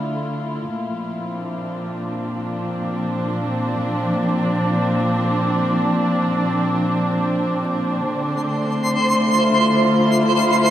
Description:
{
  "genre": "ambient",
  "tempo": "free time",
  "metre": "none",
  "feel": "none",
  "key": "unclear",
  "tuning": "A4 = 440 Hz",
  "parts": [
    { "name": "warm chamber string section", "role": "sustained chords", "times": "0.0-10.7 s", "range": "Bb2 to F4", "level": "-19 LUFS", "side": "equal", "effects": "shimmer reverb" },
    { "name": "twinkling granular texture", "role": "texture", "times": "8.4-10.7 s", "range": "C5 to C6", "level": "-18 LUFS", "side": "right 1 dB", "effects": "built-in reverb, shimmer reverb" }
  ],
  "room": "wet spring reverb, RT60 2.3 s",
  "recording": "none",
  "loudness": "-18 LUFS",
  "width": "side -11 dB against mid",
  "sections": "0.0-10.7 A section",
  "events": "fade-in on string section 0.0-10.7",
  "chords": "0.0 Dm; 0.7 Bb; 8.1 Dm7",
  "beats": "free time"
}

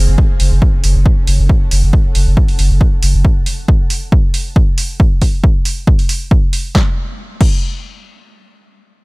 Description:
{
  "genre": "driving peak-time techno",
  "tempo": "137 BPM",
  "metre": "4/4",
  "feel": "straight",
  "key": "unclear",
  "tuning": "A4 = 440 Hz",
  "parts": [
    { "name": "saturated sub bass", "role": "bass", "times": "0.0-3.2 s", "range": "Gb1", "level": "-12 LUFS", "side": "equal", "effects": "overdrive, sidechain pumping, low-pass filter" },
    { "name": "granular cloud pad", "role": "texture", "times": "0.0-3.2 s", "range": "Db4 to A5", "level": "-31 LUFS", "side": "right 1 dB", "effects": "built-in reverb, sidechain pumping" },
    { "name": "electronic kick drum", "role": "drums", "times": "0.2-7.5 s", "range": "none", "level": "-12 LUFS", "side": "equal", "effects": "none" },
    { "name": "punchy analog drum machine", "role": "drums", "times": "0.4-7.5 s", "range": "crash cymbal, hi-hat, snare drum", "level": "-22 LUFS", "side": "right 2 dB", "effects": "sidechain pumping on hats, sidechain pumping on cymbals" }
  ],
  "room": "digital ambience",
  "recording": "none",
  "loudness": "-11 LUFS",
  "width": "side -26 dB against mid",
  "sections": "0.0-6.7 A section; 6.7-9.0 B section",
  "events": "fade-out on ambient pad 0.0-3.2",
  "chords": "0.0 Gbm; 6.7 N.C.",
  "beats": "0.18 0.62 1.06 | 1.49 1.93 2.37 2.81 | 3.25 3.68 4.12 4.56 | 5.00 5.43 5.87 6.31 | 6.75 7.19"
}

